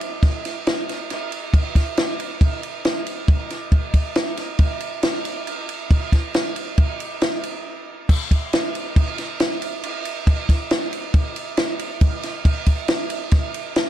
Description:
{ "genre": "rock", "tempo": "138 BPM", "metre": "5/4", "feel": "straight", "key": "none", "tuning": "none", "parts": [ { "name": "compact cocktail drum kit", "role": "drums", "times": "0.0-13.9 s", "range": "crash cymbal, kick drum, ride cymbal, snare drum", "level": "-19 LUFS", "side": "equal", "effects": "none" } ], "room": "light reverb", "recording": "dark, warm production", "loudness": "-19 LUFS", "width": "side -12 dB against mid", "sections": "0.0-8.1 A section; 8.1-13.9 B section", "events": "break 7.7-8.1", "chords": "none" }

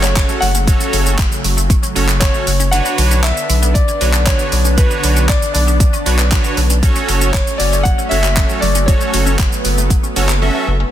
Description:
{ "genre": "dance-pop", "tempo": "117 BPM", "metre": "4/4", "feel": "straight", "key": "unclear", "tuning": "A4 = 438 Hz", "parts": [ { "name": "clear concert grand piano", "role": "melody", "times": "0.0-9.9 s", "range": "B4 to F#5", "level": "-21 LUFS", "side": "left 1 dB", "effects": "ping-pong delay" }, { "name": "big bright polysynth", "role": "accompaniment", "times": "0.0-10.7 s", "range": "C#4 to E5", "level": "-21 LUFS", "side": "right 3 dB", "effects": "sidechain pumping" }, { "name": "lush unison pad", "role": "sustained chords", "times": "0.0-10.9 s", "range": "C#3 to D4", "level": "-23 LUFS", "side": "equal", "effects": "chorus, phaser, sidechain pumping" }, { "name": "resonant blip pluck", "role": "arpeggios", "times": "0.0-10.9 s", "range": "D3 to F#4", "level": "-27 LUFS", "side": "left 1 dB", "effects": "phaser, sidechain pumping, ping-pong delay" }, { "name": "saturated sub bass", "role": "bass", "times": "0.0-10.8 s", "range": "F#1 to B1", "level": "-16 LUFS", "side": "equal", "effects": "sidechain pumping" }, { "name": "pop drum kit", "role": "drums", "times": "0.0-10.4 s", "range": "handclaps, hi-hat, kick drum, shaker", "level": "-16 LUFS", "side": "equal", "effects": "none" } ], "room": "digital ambience", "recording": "dense, heavily limited modern master", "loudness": "-12 LUFS", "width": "side -11 dB against mid", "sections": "0.0-10.9 A section", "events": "kick muted 2.7-3.8; silent gap 10.4-10.9", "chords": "0.0 F#m; 2.7 Bmadd9; 6.8 F#m" }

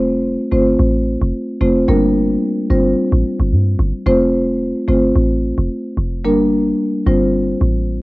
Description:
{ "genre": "afrobeats", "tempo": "110 BPM", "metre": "4/4", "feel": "swing 55% on 16ths", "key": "F major", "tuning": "A4 = 440 Hz", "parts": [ { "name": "marimba with soft mallets", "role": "accompaniment", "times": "0.0-7.3 s", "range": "G3 to C5", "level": "-15 LUFS", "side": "equal", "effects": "cassette tape" }, { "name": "deep log drum bass", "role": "bass", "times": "0.0-8.0 s", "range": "F1 to G2", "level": "-17 LUFS", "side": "equal", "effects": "none" } ], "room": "light reverb, studio reverb", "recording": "home recording on cassette", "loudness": "-14 LUFS", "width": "side -21 dB against mid", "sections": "0.0-4.1 A section; 4.1-8.0 B section", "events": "none", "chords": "0.0 F; 1.9 Gm; 2.7 Csus4/G; 4.1 F; 6.2 Gm; 7.1 Csus4/G" }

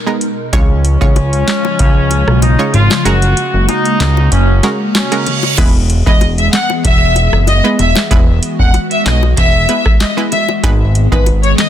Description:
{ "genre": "dancehall", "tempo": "95 BPM", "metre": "4/4", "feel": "straight", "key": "unclear", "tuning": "A4 = 440 Hz", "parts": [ { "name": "hollow soft pad", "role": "sustained chords", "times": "0.0-11.7 s", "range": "B2 to A#4", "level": "-19 LUFS", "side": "equal", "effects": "ensemble chorus, sidechain pumping" }, { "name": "analog pluck", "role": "accompaniment", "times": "0.1-11.3 s", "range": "G#3 to C#5", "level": "-19 LUFS", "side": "right 4 dB", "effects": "chorus" }, { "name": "booming analog drum machine", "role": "drums", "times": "0.2-11.7 s", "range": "crash cymbal, handclaps, hi-hat, kick drum, rim click, snare drum", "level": "-14 LUFS", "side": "equal", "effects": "none" }, { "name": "warm horn section", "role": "second line", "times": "0.5-5.5 s", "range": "C#4 to F#4", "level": "-18 LUFS", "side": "left 2 dB", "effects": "ping-pong delay" }, { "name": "fat analog bass", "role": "bass", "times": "0.5-11.5 s", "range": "E1 to C#2", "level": "-12 LUFS", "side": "equal", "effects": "none" }, { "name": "bongos", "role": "percussion", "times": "1.2-11.7 s", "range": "none", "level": "-23 LUFS", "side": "left 12 dB", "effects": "none" }, { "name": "reverse cymbal", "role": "sound effects", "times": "4.8-5.6 s", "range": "none", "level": "-20 LUFS", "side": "right 7 dB", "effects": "none" }, { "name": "warm symphonic violin section", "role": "melody", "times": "6.1-11.7 s", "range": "B4 to F#5", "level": "-15 LUFS", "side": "left 2 dB", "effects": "ping-pong delay" } ], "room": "digital ambience", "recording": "dense, heavily limited modern master", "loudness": "-9 LUFS", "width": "side -10 dB against mid", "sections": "0.0-5.6 A section; 5.6-11.7 B section", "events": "kick muted 3.1-5.6; reverse cymbal 4.8-5.6", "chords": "0.0 G#madd9; 0.5 C#; 3.1 F#add9; 5.6 E; 10.6 G#m" }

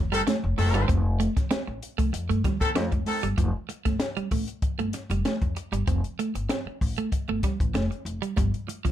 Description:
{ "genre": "funk", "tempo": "96 BPM", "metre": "4/4", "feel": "straight", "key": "unclear", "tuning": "A4 = 440 Hz", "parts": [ { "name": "upright bass", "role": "bass", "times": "0.0-8.9 s", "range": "F1 to G2", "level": "-28 LUFS", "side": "left 1 dB", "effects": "none" }, { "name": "warm horn section", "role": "second line", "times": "0.1-3.3 s", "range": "Eb3 to A4", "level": "-28 LUFS", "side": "left 2 dB", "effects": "none" }, { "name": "clean electric guitar", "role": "riff", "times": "0.1-8.9 s", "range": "F3 to C4", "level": "-30 LUFS", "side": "right 5 dB", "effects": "none" }, { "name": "compact cocktail drum kit", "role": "drums", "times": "0.1-8.9 s", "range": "hi-hat, kick drum, snare drum", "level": "-27 LUFS", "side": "left 1 dB", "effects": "none" }, { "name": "congas", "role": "percussion", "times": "0.3-3.2, 8.4-8.8 s", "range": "none", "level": "-36 LUFS", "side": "right 4 dB", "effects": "none" } ], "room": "light reverb", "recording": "none", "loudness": "-24 LUFS", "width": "side -11 dB against mid", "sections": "0.0-3.4 A section; 3.4-8.9 B section", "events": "none", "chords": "0.0 Fadd9; 8.4 G7sus4" }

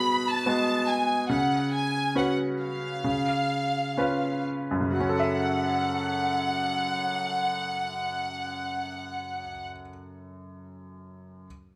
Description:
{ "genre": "pop", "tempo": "60-74 BPM", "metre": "4/4", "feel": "straight", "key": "F# minor", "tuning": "A4 = 440 Hz", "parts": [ { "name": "warm studio violin section", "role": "melody", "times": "0.0-9.7 s", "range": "E#5 to B5", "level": "-30 LUFS", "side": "equal", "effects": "none" }, { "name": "bright grand piano", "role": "accompaniment", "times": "0.0-11.5 s", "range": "F#2 to E5", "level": "-31 LUFS", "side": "equal", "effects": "none" } ], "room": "moderate large studio reverb, RT60 1.2 s", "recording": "band playing live in one room", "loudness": "-27 LUFS", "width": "mono", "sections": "0.0-5.0 A section; 5.0-9.0 B section", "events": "slowing down 0.0-5.0", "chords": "0.0 G#m7/B; 1.3 C#7sus4; 3.0 C#7; 5.0 F#m7" }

